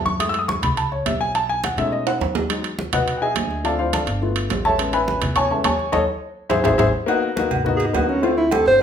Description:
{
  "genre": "Afro-Cuban jazz",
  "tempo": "209 BPM",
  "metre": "4/4",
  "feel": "straight",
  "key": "unclear",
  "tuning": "A4 = 439 Hz",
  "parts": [
    { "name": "warm baby grand piano", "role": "accompaniment", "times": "0.0-8.8 s", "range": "F3 to E6", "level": "-20 LUFS", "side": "left 2 dB", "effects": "none" },
    { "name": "upright bass", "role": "bass", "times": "0.0-8.8 s", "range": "G1 to B2", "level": "-27 LUFS", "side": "right 1 dB", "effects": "none" },
    { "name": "congas", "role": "percussion", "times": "0.1-8.7 s", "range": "none", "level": "-28 LUFS", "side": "equal", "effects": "none" },
    { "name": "timbales and agogo bells", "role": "percussion", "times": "0.2-8.8 s", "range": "none", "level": "-26 LUFS", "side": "right 6 dB", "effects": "none" },
    { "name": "mellow alto saxophone", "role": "melody", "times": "7.8-8.8 s", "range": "B3 to C5", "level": "-17 LUFS", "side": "right 2 dB", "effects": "none" }
  ],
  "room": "wet large studio reverb, RT60 0.8 s",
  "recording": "band playing live in one room",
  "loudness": "-18 LUFS",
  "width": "side -8 dB against mid",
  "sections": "0.0-7.1 A section; 7.1-8.8 A section",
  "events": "grand piano solo 0.0-7.1; drum fill 2.1-2.5, 6.5-7.1; band accent 5.9-7.1; alto saxophone solo 7.1-8.8",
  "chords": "0.2 F#m7; 2.5 Emaj9; 3.6 Dm7; 4.2 G9; 4.8 Amaj9; 5.9 A; 6.5 G#aug; 7.1 G#m9; 8.2 Dm7",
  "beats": "| 0.20 0.49 0.78 1.06 | 1.35 1.64 1.92 2.21 | 2.50 2.78 3.07 3.36 | 3.64 3.93 4.22 4.50 | 4.79 5.08 5.36 5.65 | 5.94 6.22 6.51 6.80 | 7.08 7.37 7.66 7.94 | 8.23 8.52 8.81"
}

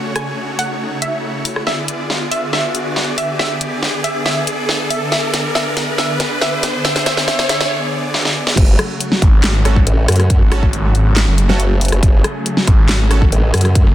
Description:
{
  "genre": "heavy wobble dubstep",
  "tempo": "139 BPM",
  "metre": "4/4",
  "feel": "half-time",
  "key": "F# minor",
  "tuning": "A4 = 442 Hz",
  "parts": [
    { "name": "wide unison pluck", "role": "melody", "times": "0.0-7.7 s", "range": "E5 to G#5", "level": "-22 LUFS", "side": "right 1 dB", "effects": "dub echo" },
    { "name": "supersaw chords", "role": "sustained chords", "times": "0.0-13.9 s", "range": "C#3 to D5", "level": "-23 LUFS", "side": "equal", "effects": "sidechain pumping, low-pass filter" },
    { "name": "riser", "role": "sound effects", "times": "0.0-7.7 s", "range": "none", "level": "-23 LUFS", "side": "equal", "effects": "none" },
    { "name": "dubstep drum kit", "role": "drums", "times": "0.2-13.8 s", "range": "crash cymbal, handclaps, hi-hat, rim click, snare drum", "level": "-18 LUFS", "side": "equal", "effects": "soft clipping on snare, high-pass filter on snare, high-pass filter on hats, high-pass filter on cymbals, high-pass filter on room" },
    { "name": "formant-sweep wobble bass", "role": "bass", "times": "8.6-13.8 s", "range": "F#1 to F#2", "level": "-14 LUFS", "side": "equal", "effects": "chorus, overdrive" },
    { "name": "electronic kick drum", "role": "drums", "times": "8.6-13.8 s", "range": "none", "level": "-12 LUFS", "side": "equal", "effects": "none" },
    { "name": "snarling distorted saw bass", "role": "bass", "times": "9.2-13.9 s", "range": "F#1 to G#1", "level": "-14 LUFS", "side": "equal", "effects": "distortion, overdrive" },
    { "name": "supersaw stab", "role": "stabs", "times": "9.7-13.2 s", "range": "C#4 to A4", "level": "-26 LUFS", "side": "right 5 dB", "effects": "dub echo" }
  ],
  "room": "light reverb",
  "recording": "dense, heavily limited modern master",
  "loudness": "-13 LUFS",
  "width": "side -13 dB against mid",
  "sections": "0.0-8.6 A section; 8.6-13.9 B section",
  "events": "build-up 0.0-8.6; riser 0.0-7.7; drum fill 1.7-7.7, 8.1-8.6; drop 8.6-13.9",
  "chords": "0.0 F#m; 1.7 G#dim; 8.6 F#m",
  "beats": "0.37 0.80 1.24 | 1.67 2.10 2.53 2.96 | 3.39 3.83 4.26 4.69 | 5.12 5.55 5.98 6.42 | 6.85 7.28 7.71 8.14 | 8.57 9.01 9.44 9.87 | 10.30 10.73 11.16 11.60 | 12.03 12.46 12.89 13.32 | 13.75"
}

